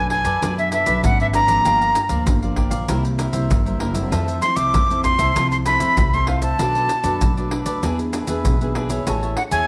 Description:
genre	samba and choro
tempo	97 BPM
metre	4/4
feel	straight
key	unclear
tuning	A4 = 440 Hz
part	breathy bright jazz flute	melody	0.0-9.7 s	E5 to D6	-21 LUFS	equal	none
part	cavaquinho	accompaniment	0.0-9.7 s	D4 to A5	-31 LUFS	equal	none
part	nylon-string guitar	accompaniment	0.0-9.7 s	F#2 to C#5	-29 LUFS	equal	none
part	upright bass	bass	0.0-9.7 s	F#1 to F#2	-27 LUFS	equal	none
part	pandeiro, maracas and surdo	percussion	0.1-9.7 s	none	-25 LUFS	equal	none
room	wet echo chamber reverb, RT60 1.4 s, small room reverb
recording	none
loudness	-19 LUFS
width	mono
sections	0.0-9.7 A section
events	none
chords	0.0 Bm7; 1.7 Gm7; 2.9 C7; 4.1 Fmaj7; 6.6 Bm7; 7.8 E7; 9.1 Amaj7

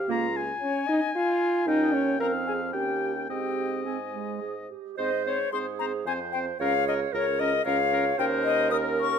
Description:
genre	quick classical-period movement for wind quintet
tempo	112 BPM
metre	3/4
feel	rubato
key	Ab major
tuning	A4 = 440 Hz
part	clear oboe	second line	0.0-9.2 s	Bb4 to Bb5	-32 LUFS	left 4 dB	none
part	mellow French horn	accompaniment	0.0-9.2 s	C4 to Bb4	-29 LUFS	equal	none
part	silver concert flute	melody	0.1-9.2 s	Db5 to Eb6	-29 LUFS	left 9 dB	none
part	warm clarinet	accompaniment	0.1-9.2 s	Ab3 to Db5	-31 LUFS	right 11 dB	none
part	dark bassoon	bass	0.1-9.2 s	Db2 to Ab2	-32 LUFS	right 3 dB	none
room	moderate recital hall reverb, RT60 1.5 s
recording	close, detailed microphones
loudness	-24 LUFS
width	side -7 dB against mid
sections	0.0-5.0 A section; 5.0-9.2 B section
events	none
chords	0.1 Bbm7/Db (rootless); 1.7 Eb7; 2.2 Fm; 2.7 Eb7; 3.3 Ab; 6.1 F5; 6.6 Bbm/Db; 8.2 Eb5

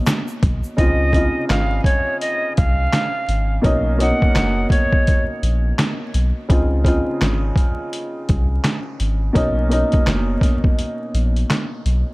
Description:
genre	hip hop, boom-bap hip-hop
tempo	84 BPM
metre	4/4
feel	swing 60% on 16ths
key	Db major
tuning	A4 = 440 Hz
part	warm upright piano	accompaniment	0.0-12.1 s	Cb3 to F4	-23 LUFS	equal	cassette tape, high-pass filter, low-pass filter
part	trip hop sampler-style drum kit	drums	0.1-12.1 s	handclaps, hi-hat, kick drum, snare drum	-18 LUFS	equal	none
part	egg shaker	percussion	0.1-0.8 s	none	-40 LUFS	right 4 dB	none
part	soft dub sub bass	bass	0.4-12.0 s	Gb1 to Db2	-19 LUFS	equal	none
part	breathy bright jazz flute	melody	0.8-5.2 s	Db5 to Gb5	-23 LUFS	right 1 dB	high-pass filter, low-pass filter, tape echo
room	small room ambience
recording	dark, warm production, vinyl crackle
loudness	-16 LUFS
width	side -22 dB against mid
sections	0.8-12.1 A section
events	break 10.8-12.1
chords	0.0 Cbmaj9; 0.8 Dbmaj9; 3.6 Cbmaj9; 6.5 Dbmaj9; 9.4 Cbmaj9

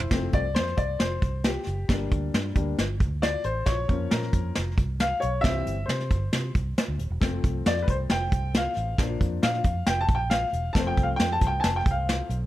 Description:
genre	uptempo 1960s-style soul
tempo	135 BPM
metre	4/4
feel	straight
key	F major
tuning	A4 = 440 Hz
part	warm baby grand piano	accompaniment	0.0-12.5 s	E3 to A5	-28 LUFS	left 2 dB	none
part	vintage muted fingered electric bass	bass	0.0-12.5 s	Eb1 to C3	-29 LUFS	right 1 dB	none
part	vintage brush drum kit	drums	0.0-12.4 s	hi-hat, kick drum, snare drum, toms	-26 LUFS	equal	none
room	studio ambience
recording	none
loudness	-23 LUFS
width	side -14 dB against mid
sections	0.1-12.5 A section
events	grand piano solo 0.1-12.5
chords	0.1 F; 1.9 Gm; 3.7 Bbm; 5.4 C; 7.2 F; 9.0 Bb; 10.8 F

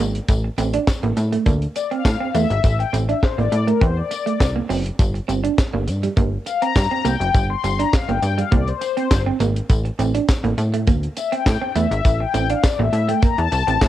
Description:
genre	early-eighties boogie funk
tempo	102 BPM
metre	4/4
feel	straight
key	unclear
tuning	A4 = 440 Hz
part	clean electric guitar	riff	0.0-13.8 s	G3 to D4	-24 LUFS	right 8 dB	wide subtle chorus, cassette tape
part	plucky analog bass	bass	0.0-13.9 s	F#1 to A2	-21 LUFS	equal	none
part	tambourine	percussion	0.0-13.9 s	none	-37 LUFS	left 9 dB	none
part	tight funk drum kit	drums	0.1-13.9 s	handclaps, hi-hat, kick drum, snare drum	-20 LUFS	equal	vintage 12-bit sampler grit, cassette tape
part	mellow synth brass	accompaniment	1.8-13.9 s	Bb4 to C6	-22 LUFS	left 8 dB	chorus, cassette tape
room	light reverb, small room ambience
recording	home recording on cassette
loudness	-17 LUFS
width	side -13 dB against mid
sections	0.0-13.9 A section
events	analog polysynth solo 0.0-13.9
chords	0.3 Amadd11; 5.0 Gmadd11; 9.7 Amadd11

